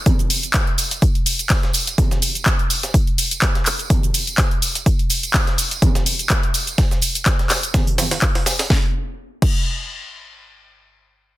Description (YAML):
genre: house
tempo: 125 BPM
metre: 4/4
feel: swing 55% on 16ths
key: none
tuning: none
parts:
  - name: breakbeat sampler-style drum kit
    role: drums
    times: 0.1-8.7 s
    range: hi-hat, snare drum, tambourine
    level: -27 LUFS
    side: equal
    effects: high-pass filter on perc, high-pass filter on snare, high-pass filter on hats
  - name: electronic kick drum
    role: drums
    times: 0.1-9.6 s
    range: none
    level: -18 LUFS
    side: equal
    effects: overdrive
  - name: house drum kit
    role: drums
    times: 0.1-9.6 s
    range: crash cymbal, handclaps, hi-hat, shaker, snare drum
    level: -21 LUFS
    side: equal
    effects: none
  - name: congas and tambourine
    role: percussion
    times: 0.1-8.7 s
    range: none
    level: -28 LUFS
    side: right 4 dB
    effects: none
room: little or no reverb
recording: dense, heavily limited modern master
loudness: -16 LUFS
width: side -16 dB against mid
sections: 0.0-8.7 A section; 8.7-11.4 B section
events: drop 0.0-8.7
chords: none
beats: 0.06 0.54 | 1.02 1.50 1.98 2.46 | 2.94 3.42 3.90 4.38 | 4.86 5.34 5.82 6.30 | 6.78 7.26 7.74 8.22 | 8.70 9.18